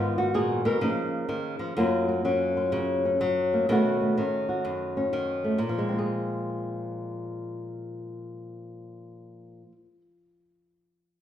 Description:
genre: solo jazz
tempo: 126 BPM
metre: 4/4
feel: swing 66% on 8ths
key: Bb minor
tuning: A4 = 435 Hz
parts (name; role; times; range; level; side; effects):
- flamenco guitar; solo; 0.0-10.0 s; Gb2 to Bb4; -25 LUFS; left 1 dB; none
room: wet large studio reverb, RT60 0.8 s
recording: band playing live in one room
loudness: -24 LUFS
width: side -10 dB against mid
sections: 0.0-1.8 A section; 1.8-5.6 B section; 5.6-9.4 C section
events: none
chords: 0.0 Abm7; 0.8 Db69; 1.8 Gbmaj7; 3.7 B9; 5.6 Bbsus2

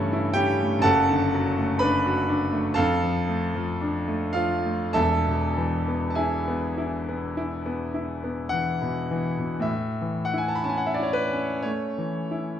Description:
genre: classical, romantic nocturne for solo piano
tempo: 48-63 BPM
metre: 4/4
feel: rubato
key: A major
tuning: A4 = 440 Hz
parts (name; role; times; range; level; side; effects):
- clear grand piano; solo; 0.0-12.6 s; E1 to B5; -23 LUFS; equal; none
room: moderate recital hall reverb, RT60 1.5 s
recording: none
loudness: -23 LUFS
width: side -9 dB against mid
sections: 0.0-9.7 A section; 9.7-12.6 B section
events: none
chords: 0.0 A7/G; 0.9 D/F#; 2.8 Dm/F; 5.0 E; 9.7 A

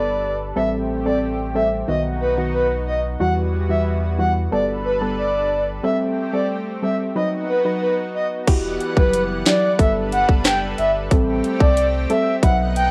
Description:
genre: dancehall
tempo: 91 BPM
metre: 4/4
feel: straight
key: E minor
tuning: A4 = 439 Hz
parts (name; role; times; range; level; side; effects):
- breathy flute-like synth lead; melody; 0.0-12.9 s; B4 to G5; -24 LUFS; equal; chorus, cassette tape
- lush unison pad; sustained chords; 0.0-12.9 s; E3 to F#5; -31 LUFS; equal; chorus, sidechain pumping
- warm sub bass; bass; 0.0-12.9 s; E1 to E2; -28 LUFS; equal; none
- soft round pluck; accompaniment; 0.6-12.6 s; D#3 to B4; -26 LUFS; equal; chorus, sidechain pumping
- island pop drum kit; drums; 8.5-12.9 s; crash cymbal, handclaps, hi-hat, kick drum, rim click, snare drum; -20 LUFS; equal; none
room: moderate spring reverb, RT60 2.5 s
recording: home recording on cassette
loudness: -20 LUFS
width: mono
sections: 0.0-8.5 A section; 8.5-12.9 B section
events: none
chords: 0.0 Gadd9; 0.6 Am7; 1.9 B; 3.2 Emadd9; 4.5 Gadd9; 5.8 Am7; 7.2 B; 8.5 Emadd9; 9.8 Gadd9; 11.1 Am7

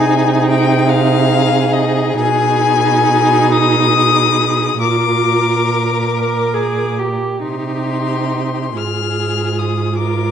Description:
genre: classical, slow romantic movement for string quartet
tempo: 46 BPM (dotted quarters)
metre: 6/8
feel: uneven beats, rubato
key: unclear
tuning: A4 = 440 Hz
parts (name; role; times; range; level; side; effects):
- muted violin; melody; 0.0-10.3 s; Eb5 to F6; -17 LUFS; left 7 dB; none
- muted violin; second line; 0.0-10.3 s; G4 to Bb4; -23 LUFS; left 2 dB; none
- muted viola; accompaniment; 0.0-10.3 s; Eb4 to Bb4; -19 LUFS; right 3 dB; none
- muted cello; bass; 0.0-10.3 s; Ab2 to C3; -17 LUFS; right 4 dB; none
room: moderate scoring stage reverb, RT60 1.6 s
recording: nothing above 11.0 kHz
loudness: -12 LUFS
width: side -8 dB against mid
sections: 0.0-10.3 A section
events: none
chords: 0.0 Ab/C; 2.2 Abm/Cb; 4.8 Bb; 7.4 Cm; 8.8 Fm/Ab

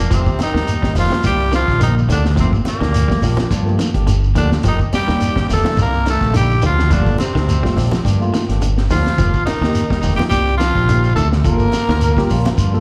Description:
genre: afrobeat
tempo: 106 BPM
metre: 4/4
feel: swing 55% on 16ths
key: F mixolydian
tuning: A4 = 440 Hz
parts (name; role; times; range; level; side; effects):
- raspy tenor saxophone; melody; 0.0-12.5 s; Bb3 to Bb4; -23 LUFS; equal; slapback echo
- bright trombone; second line; 0.0-12.5 s; Bb2 to Bb3; -32 LUFS; equal; none
- clear trombone section; second line; 0.0-12.5 s; Bb2 to Bb3; -28 LUFS; equal; none
- tine electric piano; accompaniment; 0.0-12.8 s; Eb3 to A4; -27 LUFS; equal; none
- semi-hollow electric guitar; arpeggios; 0.0-12.6 s; D3 to G3; -28 LUFS; equal; none
- modern bright fingered electric bass; bass; 0.0-12.8 s; F1 to G2; -20 LUFS; equal; none
- crunchy breakbeat drum kit; drums; 0.0-12.7 s; hi-hat, kick drum, snare drum; -24 LUFS; equal; none
- clean electric guitar; stabs; 0.1-12.8 s; Eb3 to G4; -32 LUFS; equal; none
- shekere; percussion; 0.1-12.8 s; none; -26 LUFS; equal; none
- congas; percussion; 0.3-12.6 s; none; -27 LUFS; equal; none
room: light reverb, small room ambience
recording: live gig heard through the venue's PA, club reverb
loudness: -16 LUFS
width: mono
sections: 0.1-12.8 A section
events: none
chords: 0.1 F9sus4; 2.4 Gm7; 4.6 F9sus4; 6.9 Gm7; 9.2 F9sus4; 11.4 Gm7

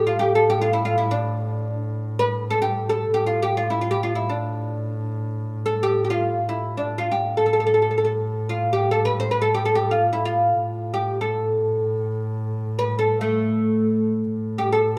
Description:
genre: Turkish makam ensemble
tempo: free time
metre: none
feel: none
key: A makam ussak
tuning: A4 = 439 Hz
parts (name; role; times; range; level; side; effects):
- oud; melody; 0.0-15.0 s; A3 to C5; -23 LUFS; equal; none
- dark double bass; drone; 0.0-15.0 s; A2; -30 LUFS; equal; none
room: light reverb, studio reverb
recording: rough home demo mix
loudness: -22 LUFS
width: mono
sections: 0.0-14.3 A section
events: none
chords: none

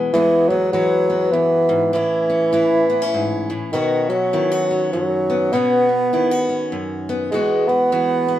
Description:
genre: country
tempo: 100 BPM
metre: 3/4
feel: swing 60% on 8ths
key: E major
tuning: A4 = 443 Hz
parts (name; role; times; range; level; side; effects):
- picked steel-string acoustic guitar; accompaniment; 0.0-8.4 s; E2 to G#4; -21 LUFS; left 3 dB; none
- mellow bassoon; melody; 0.1-8.4 s; D#3 to B3; -17 LUFS; right 1 dB; none
room: wet studio reverb, RT60 0.7 s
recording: band playing live in one room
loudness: -16 LUFS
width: side -12 dB against mid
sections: 0.1-8.4 A section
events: none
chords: 0.1 Eadd9; 1.9 A; 3.7 Badd9; 7.3 Eadd9

